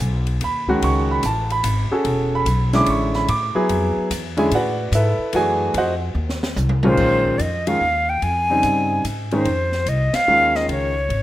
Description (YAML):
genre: modal jazz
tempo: 146 BPM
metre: 3/4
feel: swing 66% on 8ths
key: Bb dorian from 7.0 s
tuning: A4 = 441 Hz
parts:
  - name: clear concert grand piano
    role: accompaniment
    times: 0.0-10.9 s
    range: A#2 to D6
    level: -20 LUFS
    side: right 1 dB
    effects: none
  - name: upright bass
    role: bass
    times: 0.0-11.2 s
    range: E1 to A2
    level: -22 LUFS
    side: equal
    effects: none
  - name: open jazz drum kit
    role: drums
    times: 0.3-11.2 s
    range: crash cymbal, hi-hat, kick drum, ride cymbal, snare drum, toms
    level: -30 LUFS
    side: left 1 dB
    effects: none
  - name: breathy bright concert flute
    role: melody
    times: 6.9-11.2 s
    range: C5 to Ab5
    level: -19 LUFS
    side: left 1 dB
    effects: none
room: light reverb, small room ambience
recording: rough home demo mix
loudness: -17 LUFS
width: side -14 dB against mid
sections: 0.0-7.0 A section; 7.0-11.2 B section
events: drum fill 6.2-7.0; band accent 10.1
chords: 0.0 C#9sus4; 2.0 E9sus4; 5.7 F5; 7.0 Bbm11